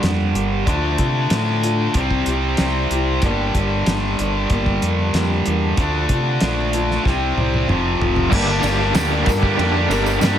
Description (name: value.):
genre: classic rock.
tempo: 94 BPM.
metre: 4/4.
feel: straight.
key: G dorian.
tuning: A4 = 441 Hz.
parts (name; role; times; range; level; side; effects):
picked old ladder-braced acoustic guitar; accompaniment; 0.0-10.4 s; G2 to Bb4; -26 LUFS; left 3 dB; none.
tight distorted guitar; riff; 0.0-10.4 s; F2 to G4; -20 LUFS; equal; distortion.
growling fingered electric bass; bass; 0.0-10.4 s; F1 to C3; -22 LUFS; equal; overdrive.
cloth-damped thuddy drum kit; drums; 0.0-10.4 s; crash cymbal, hi-hat, kick drum, ride cymbal, snare drum, toms; -22 LUFS; equal; none.
raw garage guitar; riff; 8.3-10.4 s; G2 to G3; -22 LUFS; right 1 dB; overdrive, tremolo.
tambourine; percussion; 8.6-10.4 s; none; -34 LUFS; right 5 dB; none.
room: little or no reverb.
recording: none.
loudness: -16 LUFS.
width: side -10 dB against mid.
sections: 0.0-8.3 A section; 8.3-10.4 B section.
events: drum fill 7.0-8.3.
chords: 0.0 Gm; 0.7 Dm; 1.9 C; 3.2 Gm; 5.8 Dm; 7.0 C; 7.7 F; 8.3 Gm.